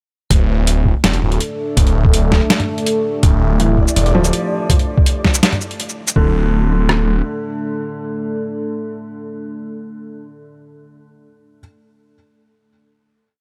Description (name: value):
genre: half-time drum and bass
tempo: 164 BPM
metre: 4/4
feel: half-time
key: unclear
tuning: A4 = 441 Hz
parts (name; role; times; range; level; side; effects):
- deep dark ambient pad; sustained chords; 1.3-9.8 s; A3 to A4; -26 LUFS; equal; chorus, built-in reverb, sidechain pumping
- phased detuned saw bass; bass; 0.3-7.2 s; D1 to E1; -18 LUFS; equal; phaser
- boom bap sampler-style drum kit; drums; 0.3-7.0 s; kick drum, rim click; -17 LUFS; equal; none
- boom bap sampler-style drum kit; drums; 0.3-6.1 s; hi-hat, shaker, snare drum, toms; -19 LUFS; equal; none
- flickering grainy texture; texture; 3.5-4.7 s; D5; -30 LUFS; equal; built-in reverb
- felt-muted upright piano; arpeggios; 3.6-6.3 s; D3 to F3; -25 LUFS; equal; tape echo
room: digital ambience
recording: none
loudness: -16 LUFS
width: mono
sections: 0.3-6.2 drop; 6.2-9.1 final chord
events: drop 0.3-6.2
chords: 0.3 D5